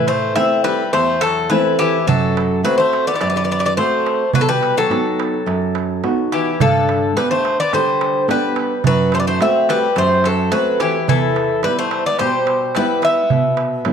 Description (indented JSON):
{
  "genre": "greek folk, Greek bouzouki band",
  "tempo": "107 BPM",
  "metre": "4/4",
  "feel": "straight",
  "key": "E minor",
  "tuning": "A4 = 440 Hz",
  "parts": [
    { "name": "Greek bouzouki", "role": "melody", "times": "0.0-13.9 s", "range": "G4 to E5", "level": "-18 LUFS", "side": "equal", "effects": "none" },
    { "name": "Greek bouzouki", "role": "second line", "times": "0.0-13.9 s", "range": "D3 to C4", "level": "-22 LUFS", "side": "left 9 dB", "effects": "none" },
    { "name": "flamenco guitar", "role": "accompaniment", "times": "0.0-13.9 s", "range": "E2 to G4", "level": "-20 LUFS", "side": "right 2 dB", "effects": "none" },
    { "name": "darbuka", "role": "percussion", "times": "0.1-13.9 s", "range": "none", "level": "-23 LUFS", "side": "right 7 dB", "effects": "none" }
  ],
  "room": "moderate echo chamber reverb, RT60 2.2 s",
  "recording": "1960s-style stereo with parts hard left and right, tape saturation",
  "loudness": "-14 LUFS",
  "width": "side -7 dB against mid",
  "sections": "0.0-13.9 A section",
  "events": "speeding up 0.0-13.9",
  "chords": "0.0 Am; 2.1 F#dim; 4.3 B; 6.6 G; 8.8 F#dim; 11.1 Em; 13.3 N.C."
}